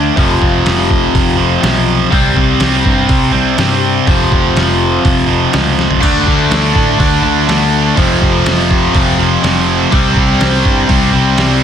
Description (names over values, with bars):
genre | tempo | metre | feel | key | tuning
hard rock | 123 BPM | 4/4 | straight | unclear | A4 = 440 Hz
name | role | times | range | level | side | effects
cranked stack guitar | riff | 0.0-11.6 s | F2 to D4 | -15 LUFS | left 9 dB | overdrive, phaser
tight distorted guitar | riff | 0.0-11.6 s | F2 to D4 | -15 LUFS | right 12 dB | distortion
picked electric bass | bass | 0.0-11.6 s | F1 to A2 | -16 LUFS | equal | none
trip hop sampler-style drum kit | drums | 0.2-11.5 s | crash cymbal, hi-hat, kick drum, snare drum, splash cymbal, toms | -16 LUFS | equal | none
tight distorted guitar | riff | 6.0-11.6 s | F2 to D4 | -16 LUFS | right 1 dB | distortion
room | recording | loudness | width
little or no reverb | dense, heavily limited modern master | -9 LUFS | side -8 dB against mid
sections
0.0-11.6 A section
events
drum fill 5.8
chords
0.2 F5; 2.1 C5; 4.1 F5; 6.0 D5; 8.0 F5; 9.9 C5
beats
| 0.17 0.66 1.14 1.63 | 2.12 2.60 3.09 3.58 | 4.07 4.56 5.04 5.53 | 6.02 6.51 6.99 7.48 | 7.97 8.46 8.94 9.43 | 9.92 10.40 10.89 11.38